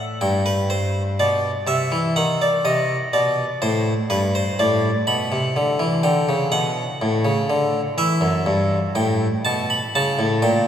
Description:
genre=classical, baroque-style two-part invention for harpsichord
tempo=62 BPM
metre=4/4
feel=straight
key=G major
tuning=A4 = 439 Hz
part: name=harpsichord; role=solo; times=0.0-10.7 s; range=F#2 to B5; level=-18 LUFS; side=equal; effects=none
room=wet church reverb, RT60 3.7 s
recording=recorded in a church or concert hall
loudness=-18 LUFS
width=side -9 dB against mid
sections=0.0-10.7 A section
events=none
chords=0.2 Gadd11; 2.2 F#dim7; 4.1 G; 6.0 D; 8.0 Em; 9.9 C#dim7(no3)

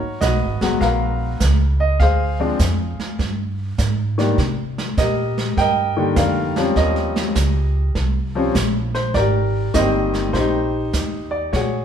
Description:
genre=jazz piano trio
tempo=101 BPM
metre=4/4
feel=swing 67% on 8ths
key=unclear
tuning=A4 = 440 Hz
part: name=warm grand piano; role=melody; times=0.0-11.8 s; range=D3 to G5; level=-20 LUFS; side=left 1 dB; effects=none
part: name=upright bass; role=bass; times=0.0-11.8 s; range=Gb1 to C3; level=-21 LUFS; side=right 1 dB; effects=none
part: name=jazz brush drum kit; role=drums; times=0.2-11.8 s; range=brushed snare drum, hi-hat, kick drum, snare drum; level=-24 LUFS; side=right 1 dB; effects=none
room=moderate large studio reverb, RT60 1.2 s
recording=band playing live in one room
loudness=-17 LUFS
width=side -8 dB against mid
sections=0.0-11.8 A section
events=none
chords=0.0 Abm9; 2.0 Dm7b5; 3.2 G5; 4.4 Cm9; 6.8 Eb13; 9.1 Abmaj9

